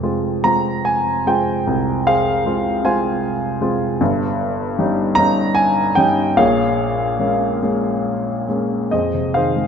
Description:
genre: classical, lyrical solo piano.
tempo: 46-53 BPM (dotted quarters).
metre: 6/8.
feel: rubato.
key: F minor.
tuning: A4 = 440 Hz.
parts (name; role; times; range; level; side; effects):
warm baby grand piano; solo; 0.0-9.7 s; F1 to Bb5; -16 LUFS; equal; none.
room: moderate scoring stage reverb, RT60 1.7 s.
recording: minimal, uncompressed stereo recording.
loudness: -16 LUFS.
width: side -7 dB against mid.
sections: 0.0-8.9 A section.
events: none.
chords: 0.0 Fm; 4.0 Eb7/G; 6.4 Bbm7; 8.9 Fm7.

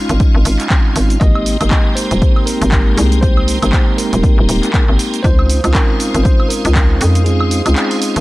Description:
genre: deep house.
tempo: 119 BPM.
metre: 4/4.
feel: swing 58% on 16ths.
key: Ab major.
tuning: A4 = 440 Hz.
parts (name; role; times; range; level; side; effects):
airy breathy pad; sustained chords; 0.0-8.2 s; Bb4 to F6; -29 LUFS; equal; chorus, sidechain pumping.
tonewheel organ; stabs; 0.0-8.2 s; Ab3 to Ab4; -18 LUFS; equal; chorus vibrato, slow rotary speaker, sidechain pumping.
warbly tape-like pad; texture; 0.0-8.2 s; Ab3 to C6; -30 LUFS; right 1 dB; none.
hollow knocking FM bass; bass; 0.1-8.2 s; Eb1 to F2; -14 LUFS; equal; tube saturation, sidechain pumping.
punchy analog drum machine; drums; 0.1-8.2 s; handclaps, hi-hat, shaker, woodblock; -21 LUFS; right 1 dB; none.
electronic kick drum; drums; 0.2-6.9 s; none; -13 LUFS; equal; overdrive.
bell-like tine electric piano; melody; 1.2-8.2 s; Ab4 to Eb5; -24 LUFS; right 1 dB; tape echo.
room: little or no reverb.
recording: dry, gritty hardware recording.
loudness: -11 LUFS.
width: side -19 dB against mid.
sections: 0.0-8.2 A section.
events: kick drops out 7.3-8.2.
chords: 0.0 Dbmaj9; 1.2 Abmaj9; 5.2 Dbmaj9.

